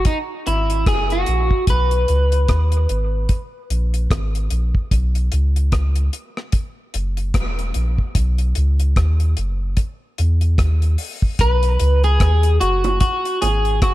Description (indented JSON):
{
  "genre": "dub reggae",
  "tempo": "74 BPM",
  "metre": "4/4",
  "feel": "swing 58% on 16ths",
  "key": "B major",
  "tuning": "A4 = 441 Hz",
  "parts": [
    { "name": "electric guitar at the edge of break-up", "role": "melody", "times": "0.0-4.1, 11.4-13.9 s", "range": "D#4 to B4", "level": "-21 LUFS", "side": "equal", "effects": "analog chorus, dub echo" },
    { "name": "soft dub sub bass", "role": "bass", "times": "0.0-13.9 s", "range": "E1 to E2", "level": "-17 LUFS", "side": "equal", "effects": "none" },
    { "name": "deep reggae drum kit", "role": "drums", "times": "0.0-13.9 s", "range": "hi-hat, kick drum, rim click", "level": "-20 LUFS", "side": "equal", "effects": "none" },
    { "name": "bongos", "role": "percussion", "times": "12.8-13.6 s", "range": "none", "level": "-29 LUFS", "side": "right 5 dB", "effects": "dub echo" }
  ],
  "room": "studio reverb",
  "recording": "none",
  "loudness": "-16 LUFS",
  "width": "side -16 dB against mid",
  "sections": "0.0-11.4 A section; 11.4-13.9 B section",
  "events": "none",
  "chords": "0.1 F#9; 1.7 B6; 3.3 G#madd9; 4.9 Bsus2; 6.5 Esus2; 8.2 B; 9.8 N.C.; 11.4 B; 13.0 F#sus2"
}